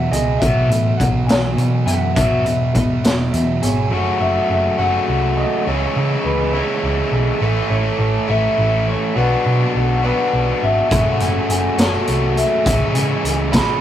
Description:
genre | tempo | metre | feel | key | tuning
indie rock | 69 BPM (dotted quarters) | 6/8 | straight | unclear | A4 = 438 Hz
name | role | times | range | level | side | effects
electric guitar through a small old amp | melody | 0.0-13.8 s | A4 to B5 | -22 LUFS | left 1 dB | none
biting overdriven guitar | riff | 0.0-13.8 s | E3 to G#4 | -23 LUFS | right 4 dB | none
distorted electric guitar | riff | 0.0-13.8 s | E2 to F#4 | -21 LUFS | left 3 dB | distortion
hollow-body short-scale picked electric bass | bass | 0.0-13.6 s | E1 to C#3 | -20 LUFS | equal | none
raw garage drum kit | drums | 0.1-3.8, 10.9-13.7 s | hi-hat, kick drum, snare drum | -19 LUFS | equal | none
room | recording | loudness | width
wet small room reverb, RT60 0.5 s | rough rehearsal-room recording | -15 LUFS | side -11 dB against mid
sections
0.0-3.9 A section; 3.9-13.8 B section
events
none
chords
0.4 Bsus4; 2.2 Eadd9; 3.9 F#m; 5.7 C#m; 7.4 A; 9.2 Bm; 10.9 F#m; 12.7 C#m7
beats
| 0.41 1.29 | 2.16 3.04 | 3.92 4.79 | 5.67 6.54 | 7.42 8.29 | 9.16 10.04 | 10.91 11.78 | 12.65 13.52

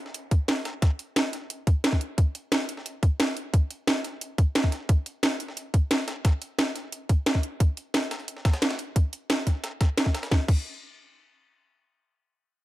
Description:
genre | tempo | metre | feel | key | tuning
dark technical drum and bass | 177 BPM | 4/4 | straight | none | none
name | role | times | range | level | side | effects
breakbeat sampler-style drum kit | drums | 0.1-10.3 s | hi-hat, snare drum | -37 LUFS | equal | high-pass filter on hats, high-pass filter on snare
drum and bass drum kit | drums | 0.1-10.6 s | crash cymbal, hi-hat, snare drum | -27 LUFS | equal | overdrive
electronic kick drum | drums | 0.3-10.6 s | none | -21 LUFS | equal | overdrive
room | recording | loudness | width
light reverb | dark, warm production | -24 LUFS | side -16 dB against mid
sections
0.0-10.3 A section; 10.3-11.7 B section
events
none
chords
none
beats
0.14 0.48 | 0.82 1.16 1.50 1.84 | 2.18 2.52 2.86 3.20 | 3.54 3.87 4.21 4.55 | 4.89 5.23 5.57 5.91 | 6.25 6.59 6.92 7.26 | 7.60 7.94 8.28 8.62 | 8.96 9.30 9.64 9.98 | 10.31

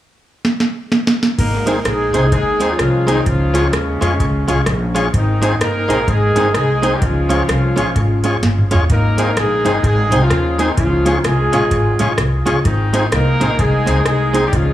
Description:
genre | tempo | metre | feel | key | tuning
ska | 128 BPM | 4/4 | swing 61% on 8ths | Ab major | A4 = 440 Hz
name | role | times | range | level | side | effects
booming analog drum machine | drums | 0.4-14.7 s | crash cymbal, hi-hat, kick drum, rim click, snare drum, toms | -20 LUFS | equal | overdrive, dub echo
mellow horn section | melody | 1.4-14.7 s | Db3 to Bb4 | -18 LUFS | equal | dub echo
upright bass | bass | 1.4-14.7 s | G1 to F2 | -18 LUFS | equal | none
archtop guitar, miked and amplified | accompaniment | 1.7-14.4 s | Ab3 to Ab4 | -22 LUFS | right 2 dB | dub echo
tonewheel organ | stabs | 1.7-14.5 s | Eb4 to Db5 | -23 LUFS | left 3 dB | overdrive, dub echo
room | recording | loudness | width
moderate echo chamber reverb, RT60 2.4 s | small room ambience | -13 LUFS | side -13 dB against mid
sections
0.0-1.4 A section; 1.4-14.7 B section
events
drum fill 0.4-1.4, 8.4-8.9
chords
0.0 N.C.; 1.4 Ab; 3.3 Db; 5.1 Ab; 7.0 Db; 8.9 Ab; 10.8 Db; 12.7 Ab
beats
0.45 0.92 | 1.39 1.85 2.32 2.79 | 3.26 3.73 4.20 4.67 | 5.14 5.61 6.08 6.55 | 7.02 7.49 7.96 8.43 | 8.89 9.36 9.83 10.30 | 10.77 11.24 11.71 12.18 | 12.65 13.12 13.59 14.06 | 14.53

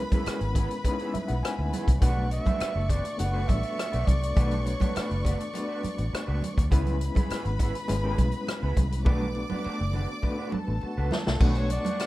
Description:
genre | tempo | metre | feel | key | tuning
lush 1970s-style soul | 102 BPM | 4/4 | straight | B dorian | A4 = 440 Hz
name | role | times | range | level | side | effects
warm studio violin section | second line | 0.0-12.1 s | D4 to D6 | -37 LUFS | left 1 dB | none
overdriven reed electric piano | accompaniment | 0.0-12.1 s | G#3 to G#5 | -33 LUFS | left 2 dB | fast tremolo
vintage muted fingered electric bass | bass | 0.0-11.8 s | F#1 to D2 | -28 LUFS | equal | none
electric guitar through a small old amp | riff | 0.1-12.1 s | A3 to C#5 | -38 LUFS | right 4 dB | analog chorus
vintage drum kit | drums | 0.1-12.1 s | crash cymbal, hi-hat, kick drum, rim click, snare drum | -26 LUFS | equal | none
congas | percussion | 0.1-12.0 s | none | -35 LUFS | right 4 dB | none
warm flugelhorn | melody | 2.0-6.4, 10.8-12.1 s | F#4 to F#5 | -34 LUFS | right 1 dB | tape echo
room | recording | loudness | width
little or no reverb | rough home demo mix | -24 LUFS | side -17 dB against mid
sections
0.0-11.4 A section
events
reed electric piano fill 0.8-2.0; drum fill 9.1-11.4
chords
0.0 C#m7; 2.0 Bm7; 6.7 C#m7; 9.1 Bm7; 11.4 Bm9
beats
0.26 0.85 1.43 | 2.02 2.61 3.19 3.78 | 4.37 4.95 5.54 6.13 | 6.71 7.30 7.89 8.47 | 9.06 9.65 10.23 10.82 | 11.41 11.99

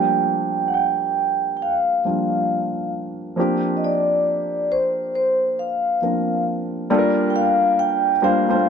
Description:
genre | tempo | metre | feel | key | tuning
R&B | 68 BPM | 4/4 | swing 60% on 16ths | unclear | A4 = 440 Hz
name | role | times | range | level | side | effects
vibraphone with medium mallets | melody | 0.0-8.7 s | C5 to G5 | -19 LUFS | equal | low-pass filter, slapback echo
warm grand piano | accompaniment | 0.0-8.7 s | F3 to C5 | -22 LUFS | equal | low-pass filter
room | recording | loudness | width
moderate plate reverb, RT60 3.6 s | none | -18 LUFS | side -7 dB against mid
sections
0.0-6.9 A section; 6.9-8.7 B section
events
none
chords
0.0 Gm7; 3.4 Bb69; 6.9 Gm7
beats
0.72 1.60 2.48 | 3.36 4.25 5.13 6.01 | 6.89 7.78 8.66

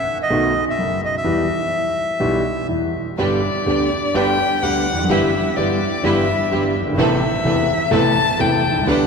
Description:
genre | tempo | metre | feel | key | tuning
tango | 126 BPM | 4/4 | rubato | E minor, G major from 3.2 s | A4 = 440 Hz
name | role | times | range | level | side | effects
bandoneon | melody | 0.0-2.7 s | D#5 to E5 | -23 LUFS | equal | none
clear concert grand piano | accompaniment | 0.3-9.1 s | E1 to G4 | -18 LUFS | equal | none
dark violin | second line | 3.2-9.1 s | D5 to A5 | -20 LUFS | left 5 dB | none
clear symphonic string section | stabs | 3.2-9.1 s | G3 to B4 | -24 LUFS | right 4 dB | none
room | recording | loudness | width
wet cathedral reverb, RT60 4.5 s | recorded in a church or concert hall | -16 LUFS | side -5 dB against mid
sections
0.0-3.2 A section; 3.2-9.1 B section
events
violin solo 3.2-9.1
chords
0.3 B7; 1.3 Em; 3.2 G; 5.1 Em/G; 7.0 Amadd9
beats
0.30 0.78 | 1.25 1.73 2.21 2.69 | 3.18 3.67 4.14 4.62 | 5.10 5.57 6.04 6.51 | 6.98 7.45 7.92 8.40 | 8.88

